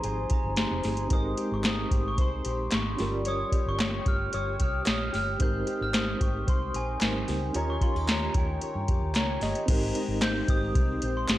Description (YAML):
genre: indie pop, bedroom pop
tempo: 112 BPM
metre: 4/4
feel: straight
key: Ab major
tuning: A4 = 439 Hz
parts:
  - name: glockenspiel with soft plastic mallets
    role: melody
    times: 0.0-11.4 s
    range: G5 to G6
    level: -34 LUFS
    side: right 1 dB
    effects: lush chorus, tape echo
  - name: fingerpicked plugged-in steel-string acoustic guitar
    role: accompaniment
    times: 0.0-11.4 s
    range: Eb3 to Db5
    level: -34 LUFS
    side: left 3 dB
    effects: analog chorus, vibrato effect
  - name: mellow reed electric piano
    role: accompaniment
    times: 0.0-11.4 s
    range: G3 to Bb5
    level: -35 LUFS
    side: right 2 dB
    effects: fast tremolo
  - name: vintage muted fingered electric bass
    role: bass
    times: 0.0-11.4 s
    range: F1 to G2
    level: -33 LUFS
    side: equal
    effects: transformer saturation
  - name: soft vintage rhythm box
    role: drums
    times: 0.0-11.4 s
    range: crash cymbal, hi-hat, kick drum, snare drum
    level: -27 LUFS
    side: equal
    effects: overdrive
  - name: group handclap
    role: percussion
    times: 1.6-11.4 s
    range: none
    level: -38 LUFS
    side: right 1 dB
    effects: none
room: little or no reverb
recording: dry, gritty hardware recording, cassette tape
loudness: -25 LUFS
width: side -15 dB against mid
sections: 0.0-9.7 A section; 9.7-11.4 B section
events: reed electric piano fill 8.9-9.7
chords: 0.0 Fm7; 1.1 Abmaj7; 3.0 Gm7b5; 5.4 Abmaj7; 7.5 Eb7; 9.7 Abmaj7